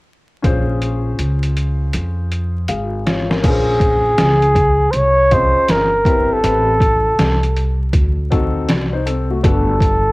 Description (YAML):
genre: hip hop, jazz-hop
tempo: 80 BPM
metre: 4/4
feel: swing 65% on 16ths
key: Bb dorian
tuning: A4 = 440 Hz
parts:
  - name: warm grand piano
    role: accompaniment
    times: 0.4-9.7 s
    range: A3 to F5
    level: -22 LUFS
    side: left 4 dB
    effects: cassette tape
  - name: upright bass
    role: bass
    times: 0.4-10.1 s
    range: G1 to F2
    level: -18 LUFS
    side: equal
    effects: none
  - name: trip hop sampler-style drum kit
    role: drums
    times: 0.4-10.0 s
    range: crash cymbal, hi-hat, kick drum, snare drum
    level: -18 LUFS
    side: equal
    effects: overdrive
  - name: warm flugelhorn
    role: melody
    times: 3.5-10.1 s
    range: Ab4 to Db5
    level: -14 LUFS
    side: equal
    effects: cassette tape
room: light reverb, small room ambience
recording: home recording on cassette, vinyl crackle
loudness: -13 LUFS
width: side -22 dB against mid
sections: 0.4-3.4 A section; 3.4-10.1 B section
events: drum fill 0.4-3.4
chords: 0.4 Bbm7; 6.4 Am7; 7.9 D7b9; 9.4 Gmaj9